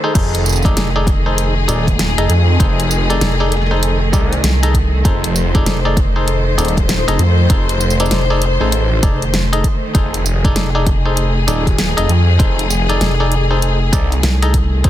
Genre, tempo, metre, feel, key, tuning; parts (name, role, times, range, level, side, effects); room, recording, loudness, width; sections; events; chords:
glitch hop; 98 BPM; 4/4; swing 63% on 16ths; A4 = 439 Hz
rich studio string section; sustained chords; 0.0-14.9 s; Eb3 to C5; -21 LUFS; left 1 dB; sidechain pumping
bright clav; stabs; 0.0-14.9 s; Eb4 to Eb5; -21 LUFS; left 1 dB; sidechain pumping, digital delay
phased detuned saw bass; bass; 0.1-14.9 s; Eb1 to F2; -15 LUFS; equal; phaser, tube saturation
electronic kick drum; drums; 0.2-14.9 s; -16 LUFS; equal; studio reverb
pop drum kit; drums; 0.2-14.9 s; crash cymbal, hi-hat, snare drum, tambourine; -21 LUFS; equal; studio reverb
rubbery square bass; bass; 0.8-14.8 s; F1 to C2; -16 LUFS; equal
little or no reverb; dense, heavily limited modern master; -12 LUFS; side -12 dB against mid
0.0-14.9 A section
0.0 F7#9